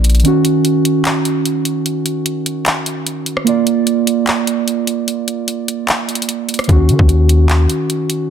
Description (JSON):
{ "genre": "hip hop, trap", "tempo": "149 BPM", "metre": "4/4", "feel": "half-time", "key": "Eb minor", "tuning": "A4 = 439 Hz", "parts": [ { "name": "muted felt-like synth keys", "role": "accompaniment", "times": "0.0-8.3 s", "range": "Eb3 to D5", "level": "-16 LUFS", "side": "right 3 dB", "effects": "chorus, low-pass filter" }, { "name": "long sustained 808-style bass", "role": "bass", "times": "0.0-0.2, 6.7-7.7 s", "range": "Bb1 to Eb3", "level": "-11 LUFS", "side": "left 1 dB", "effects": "none" }, { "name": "trap drum kit", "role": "drums", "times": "0.0-8.2 s", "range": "handclaps, hi-hat, kick drum, rim click", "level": "-17 LUFS", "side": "equal", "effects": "none" } ], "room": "digital ambience", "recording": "dense, heavily limited modern master", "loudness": "-13 LUFS", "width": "side -8 dB against mid", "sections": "0.0-8.3 A section", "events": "break 0.2-6.7", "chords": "0.2 Ebm7; 3.5 Bb; 6.7 Ebm7" }